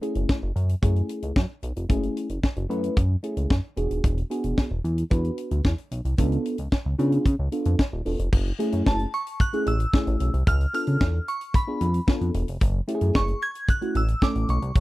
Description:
early-eighties boogie funk; 112 BPM; 4/4; straight; F# minor; A4 = 440 Hz
mellow FM electric piano; accompaniment; 0.0-14.6 s; A3 to B4; -28 LUFS; equal; chorus, phaser
tight funk drum kit; drums; 0.0-14.8 s; crash cymbal, hi-hat, kick drum, snare drum; -22 LUFS; equal
chorused synth bass; bass; 0.2-14.8 s; D#1 to C#3; -24 LUFS; equal
glassy synth bell; melody; 8.9-14.8 s; A5 to G#6; -29 LUFS; right 1 dB; chorus, tremolo, slapback echo
little or no reverb; dry, close 1970s-style studio recording; -22 LUFS; side -18 dB against mid
0.0-8.3 A section; 8.3-14.8 B section
0.0 F#m7; 3.8 E9; 6.2 C#7b9b13; 8.3 F#m7; 10.5 C#7b9b13; 12.6 F#m7
0.29 0.83 1.36 | 1.90 2.43 2.97 3.50 | 4.04 4.58 5.11 5.65 | 6.18 6.72 7.25 7.79 | 8.33 8.86 9.40 9.93 | 10.47 11.00 11.54 12.08 | 12.61 13.15 13.68 14.22 | 14.75

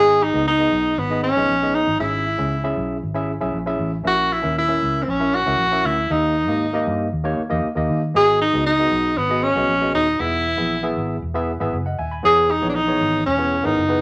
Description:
uptempo 1960s-style soul; 117 BPM; 4/4; straight; G# minor; A4 = 440 Hz
warm tenor saxophone; melody; 0.0-14.0 s; B3 to G#4; -20 LUFS; equal
barky tine electric piano; accompaniment; 0.0-14.0 s; G#2 to B5; -27 LUFS; equal
vintage muted fingered electric bass; bass; 0.0-14.0 s; D#1 to D#3; -29 LUFS; equal
wet studio reverb, RT60 0.6 s; -20 LUFS; mono
0.0-14.0 A section
0.0 G#m; 2.0 C#m/G#; 4.1 A#dim; 6.1 D#; 8.2 G#m7; 10.2 E; 12.2 C#m7/E
0.47 0.98 1.49 | 2.00 2.52 3.03 3.54 | 4.06 4.57 5.08 5.59 | 6.11 6.62 7.13 7.64 | 8.15 8.67 9.18 9.69 | 10.20 10.71 11.22 11.74 | 12.25 12.76 13.27 13.78

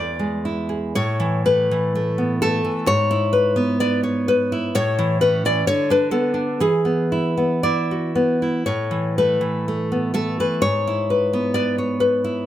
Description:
romantic piece for solo classical guitar; 55-66 BPM; 2/4; rubato; A major; A4 = 440 Hz
nylon-string guitar; solo; 0.0-12.5 s; E2 to D5; -18 LUFS; equal
light reverb; close, detailed microphones; -18 LUFS; side -12 dB against mid
1.0-12.5 A section
0.0 E; 1.0 A5; 2.9 E7/G#; 4.7 A; 5.6 Bm/D; 6.6 E; 8.7 A5; 10.6 E7/G#
| 0.97 1.96 | 2.89 3.81 | 4.74 5.64 | 6.59 7.64 | 8.66 9.66 | 10.61 11.55

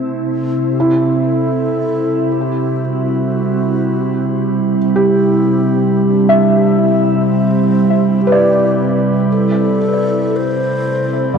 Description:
ambient; 56 BPM; 4/4; straight; C lydian; A4 = 440 Hz
glassy FM pad; sustained chords; 0.0-11.4 s; C3 to A4; -14 LUFS; right 1 dB; ensemble chorus, built-in reverb
breathy wooden-headed alto flute; melody; 0.7-11.4 s; C4 to C5; -22 LUFS; left 1 dB; shimmer reverb, ping-pong delay
glass harmonica; texture; 0.7-11.4 s; C5 to B5; -34 LUFS; equal; shimmer reverb
felt-muted upright piano; arpeggios; 0.8-11.4 s; G3 to E5; -18 LUFS; equal; shimmer reverb, ping-pong delay
wet cathedral reverb, RT60 6.7 s; worn, warbling old tape, cassette tape, warbly pitch drift; -12 LUFS; side -6 dB against mid
0.7-11.4 A section
fade-in on glass harmonica 0.7-11.4; fade-in on alto flute 0.7-11.4
0.0 Am/C; 0.7 Cmaj7; 9.3 Amadd9/C
| 0.70 1.77 2.84 3.91 | 4.99 6.06 7.13 8.20 | 9.27 10.34

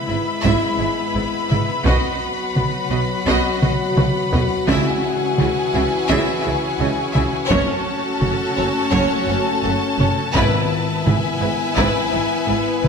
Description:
cinematic, epic orchestral film score; 85 BPM; 4/4; straight; A4 = 442 Hz
clear studio violin section; melody; 0.0-12.9 s; G#5 to B5; -25 LUFS; left 4 dB
clear symphonic string section; sustained chords; 0.0-12.9 s; B3 to F#5; -25 LUFS; equal
dark French horn section; sustained chords; 0.0-12.9 s; E3 to F#4; -25 LUFS; left 4 dB
rich symphonic violin section; second line; 0.1-12.9 s; G#4 to E5; -27 LUFS; left 2 dB
clear symphonic viola section; accompaniment; 0.1-12.9 s; C#4 to F#4; -28 LUFS; right 1 dB
bright symphonic double bass section; bass; 0.1-12.9 s; F#1 to C#2; -25 LUFS; right 4 dB
clear symphonic cello section; bass; 0.1-12.9 s; F#2 to C#3; -26 LUFS; right 4 dB
solo taiko drums; drums; 0.5-12.9 s; -23 LUFS; equal
timpani; percussion; 4.7-5.7, 10.3-11.4 s; G#2 to C#3; -27 LUFS; left 1 dB
wet scoring stage reverb, RT60 1.6 s; -16 LUFS; side -6 dB against mid
0.0-12.9 A section
drum fill 3.6-4.7
0.0 E/G#; 1.9 B; 4.7 C#m; 7.5 F#m; 10.3 E/G#
0.44 1.15 | 1.86 2.56 3.27 3.98 | 4.68 5.39 6.09 6.80 | 7.51 8.21 8.92 9.63 | 10.34 11.05 11.76 12.47

